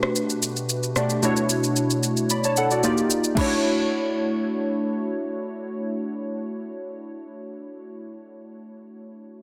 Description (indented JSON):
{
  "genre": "amapiano",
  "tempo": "112 BPM",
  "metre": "4/4",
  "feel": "straight",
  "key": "D major",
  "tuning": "A4 = 441 Hz",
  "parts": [
    { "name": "glassy digital keys", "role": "accompaniment", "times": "0.0-9.4 s", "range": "B2 to B5", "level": "-26 LUFS", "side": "equal", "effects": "chorus" },
    { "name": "smooth R&B drum kit", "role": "drums", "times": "0.0-3.5 s", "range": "crash cymbal, kick drum, rim click, shaker", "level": "-29 LUFS", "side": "equal", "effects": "soft clipping on snare" }
  ],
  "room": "light reverb",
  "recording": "dense, heavily limited modern master",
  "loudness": "-24 LUFS",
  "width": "mono",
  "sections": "0.0-3.4 A section; 3.4-7.7 B section",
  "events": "kick muted 1.2-3.4",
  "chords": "0.0 Gmaj9/B; 1.2 Bm11; 2.8 Ebmaj9; 3.4 Dmaj9",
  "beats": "0.16 0.69 | 1.23 1.76 2.30 2.83 | 3.37 3.91 4.44 4.98 | 5.51 6.05 6.58 7.12"
}